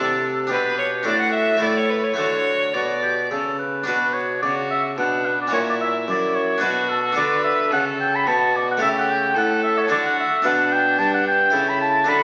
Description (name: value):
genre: classical, baroque-style sonata movement with continuo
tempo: 110 BPM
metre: 3/4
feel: straight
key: D major, B minor from 3.9 s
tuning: A4 = 440 Hz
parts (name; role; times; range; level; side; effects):
- warm oboe; melody; 0.0-12.2 s; E4 to B5; -23 LUFS; equal; none
- harpsichord; accompaniment; 0.0-12.2 s; F#2 to C#5; -28 LUFS; equal; none
- mellow bassoon; bass; 0.0-12.2 s; F#2 to D3; -28 LUFS; equal; none
- rich violin; second line; 0.5-12.2 s; D4 to F#5; -27 LUFS; equal; none
room: wet recital hall reverb, RT60 1.7 s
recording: very old 78 rpm record, vinyl crackle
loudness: -20 LUFS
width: mono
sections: 0.0-3.9 A section; 3.9-12.2 A section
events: none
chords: 0.0 D5/C; 0.5 G/B; 1.1 D/A; 1.6 A5; 2.2 D; 3.9 Bm; 5.5 F#7/A#; 6.6 Bm; 7.2 D; 8.8 A7/C#; 9.9 D; 10.4 G/B; 11.5 A/C#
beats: | 0.51 1.06 1.62 | 2.18 2.75 3.31 | 3.87 4.42 4.98 | 5.53 6.07 6.62 | 7.17 7.72 8.27 | 8.82 9.36 9.91 | 10.45 10.99 11.54 | 12.08